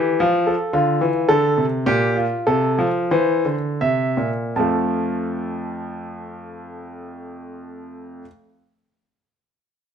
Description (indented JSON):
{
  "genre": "classical, baroque-style two-part invention for grand piano",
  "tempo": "76-113 BPM",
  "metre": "3/4",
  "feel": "straight",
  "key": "F major",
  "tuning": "A4 = 440 Hz",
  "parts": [
    { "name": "clear grand piano", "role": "solo", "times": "0.0-8.2 s", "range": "F2 to A5", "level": "-19 LUFS", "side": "equal", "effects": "none" }
  ],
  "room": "wet stone room reverb, RT60 1.1 s",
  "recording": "heard from further back in the room",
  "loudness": "-18 LUFS",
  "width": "side -8 dB against mid",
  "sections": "0.0-4.6 A section; 4.6-9.3 B section",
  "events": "slowing down 0.0-4.6",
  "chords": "0.2 F; 0.7 Dm; 1.9 Gm/Bb; 2.5 F/C; 3.8 C7; 4.6 F",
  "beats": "0.20 | 0.73 1.29 1.86 | 2.47 3.11 3.80 | 4.56 5.34 6.13 | 6.92 7.70"
}